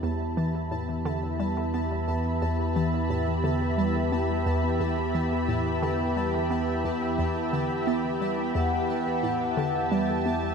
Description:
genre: ambient, sequencer-driven space music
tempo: 88 BPM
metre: 4/4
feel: straight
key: E minor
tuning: A4 = 438 Hz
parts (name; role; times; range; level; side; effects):
- lush unison pad; sustained chords; 0.0-10.5 s; E3 to B5; -27 LUFS; equal; chorus
- hollow square pluck; riff; 0.0-10.5 s; E2 to B3; -31 LUFS; equal; chorus, ping-pong delay
- round analog bass; bass; 0.0-10.5 s; E2; -32 LUFS; equal; none
- pulsing gated texture; texture; 0.0-10.5 s; A5; -37 LUFS; right 2 dB; chorus, built-in reverb
- expressive portamento lead; melody; 8.6-10.5 s; E5 to F#5; -31 LUFS; left 2 dB; wide subtle chorus, ping-pong delay
room: wet plate reverb, RT60 3.3 s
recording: none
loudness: -24 LUFS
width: side -6 dB against mid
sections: 0.0-10.5 A section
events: none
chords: 0.0 Em

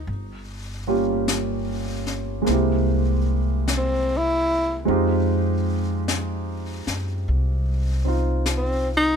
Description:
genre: jazz ballad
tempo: 50 BPM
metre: 4/4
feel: swing 66% on 8ths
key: unclear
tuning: A4 = 440 Hz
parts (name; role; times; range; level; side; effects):
- warm baby grand piano; accompaniment; 0.0-9.2 s; G3 to G4; -24 LUFS; right 2 dB; none
- upright bass; bass; 0.0-9.2 s; G1 to Gb2; -24 LUFS; equal; none
- jazz brush drum kit; drums; 0.1-9.2 s; brushed snare drum, hi-hat, snare drum; -30 LUFS; left 4 dB; none
- breathy tenor saxophone; melody; 3.8-9.2 s; C4 to E4; -21 LUFS; left 1 dB; none
room: little or no reverb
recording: close, detailed microphones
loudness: -20 LUFS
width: side -7 dB against mid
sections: 0.0-9.2 A section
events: tenor saxophone solo 0.0-9.2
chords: 0.1 Gm7b5; 2.5 C7b13; 4.9 Fm9

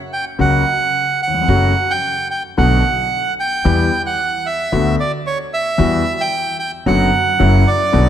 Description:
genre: tango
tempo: 112 BPM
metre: 4/4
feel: rubato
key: B minor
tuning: A4 = 442 Hz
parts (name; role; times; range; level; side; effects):
- bandoneon; melody; 0.1-8.1 s; C#5 to G5; -17 LUFS; right 3 dB; none
- clear concert grand piano; accompaniment; 0.4-8.1 s; B1 to G4; -19 LUFS; left 4 dB; none
- upright bass; bass; 0.4-8.1 s; F#1 to E2; -17 LUFS; right 1 dB; none
room: moderate concert hall reverb, RT60 2.3 s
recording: none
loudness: -14 LUFS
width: side -10 dB against mid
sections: 0.0-8.1 A section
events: none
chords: 0.0 F#; 1.5 F#m; 2.6 Bm7; 3.6 Em; 4.7 Bm7/D; 5.8 Emadd9; 6.9 Bm/F#; 7.4 F#7

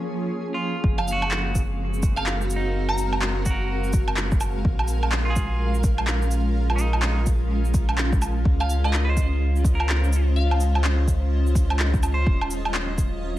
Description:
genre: future garage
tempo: 126 BPM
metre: 4/4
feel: swing 62% on 16ths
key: unclear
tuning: A4 = 442 Hz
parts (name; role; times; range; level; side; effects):
- granular cloud pad; sustained chords; 0.0-13.4 s; F3 to F5; -29 LUFS; equal; built-in reverb, sidechain pumping
- backwards swelling texture; texture; 0.0-0.8 s; Ab4; -42 LUFS; left 2 dB; built-in reverb
- clean electric guitar; accompaniment; 0.5-12.5 s; Eb4 to C5; -33 LUFS; right 2 dB; vintage 12-bit sampler grit, sidechain pumping, dub echo
- soft dub sub bass; bass; 0.8-13.4 s; Eb1 to Db2; -23 LUFS; equal; tube saturation, sidechain pumping
- electronic kick drum; drums; 0.8-13.1 s; none; -22 LUFS; equal; overdrive
- glassy wavetable pluck; melody; 1.0-3.4, 8.6-10.7 s; Eb5 to Bb5; -33 LUFS; left 1 dB; chorus, dub echo
- electronic woodblock, cabasa, shaker and handclaps; drums; 1.0-13.1 s; none; -28 LUFS; right 1 dB; overdrive, low-pass filter on perc, low-pass filter on snare, low-pass filter on room
room: little or no reverb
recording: vinyl crackle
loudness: -20 LUFS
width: side -15 dB against mid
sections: 0.8-13.4 A section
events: none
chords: 0.0 Bbm7; 0.8 Gbmaj9#11; 4.6 Bbm7; 8.5 Dbmaj9; 12.3 Ebm9

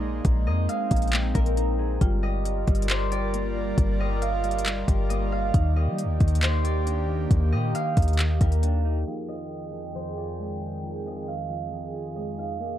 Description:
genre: hip hop, atmospheric cloud-rap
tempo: 136 BPM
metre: 4/4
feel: half-time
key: F dorian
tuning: A4 = 439 Hz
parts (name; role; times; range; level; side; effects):
- concert harp; melody; 0.0-12.8 s; Bb4 to F5; -32 LUFS; right 4 dB; tape echo
- airy breathy pad; sustained chords; 0.0-12.8 s; F2 to G5; -32 LUFS; equal; chorus, sidechain pumping
- mellow electric guitar; arpeggios; 0.0-12.8 s; Eb3 to Bb4; -35 LUFS; left 4 dB; tape echo
- clean 808-style bass; bass; 0.0-9.0 s; G1 to G3; -24 LUFS; equal; none
- marimba with medium hard mallets; texture; 0.0-12.8 s; Eb4 to Ab5; -41 LUFS; left 2 dB; none
- smooth R&B drum kit; drums; 0.2-8.7 s; handclaps, hi-hat, kick drum; -24 LUFS; equal; overdrive, vintage 12-bit sampler grit
room: little or no reverb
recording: low-pass filter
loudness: -23 LUFS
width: side -12 dB against mid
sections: 0.0-9.1 A section; 9.1-12.8 B section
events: filter sweep 9.1-12.8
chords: 0.0 Bb7sus4; 2.0 Gm7; 5.5 Ebmaj7; 9.1 Fm9

